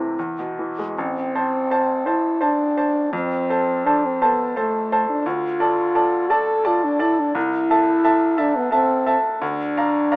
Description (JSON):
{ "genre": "classical, romantic duo for French horn and grand piano", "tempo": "85 BPM", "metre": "3/4", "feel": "rubato", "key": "A minor", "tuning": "A4 = 440 Hz", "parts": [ { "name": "mellow French horn", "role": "melody", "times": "0.0-10.2 s", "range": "A3 to A4", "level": "-21 LUFS", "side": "equal", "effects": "none" }, { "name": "bright grand piano", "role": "accompaniment", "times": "0.0-10.2 s", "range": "A1 to Bb5", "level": "-20 LUFS", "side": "equal", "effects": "none" } ], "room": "light reverb", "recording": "small speaker sound", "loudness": "-18 LUFS", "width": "side -24 dB against mid", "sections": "0.9-10.2 A section", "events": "none", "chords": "0.2 E; 0.9 Am; 3.1 F; 5.2 Dm; 7.4 Am/C; 9.4 Bb/D" }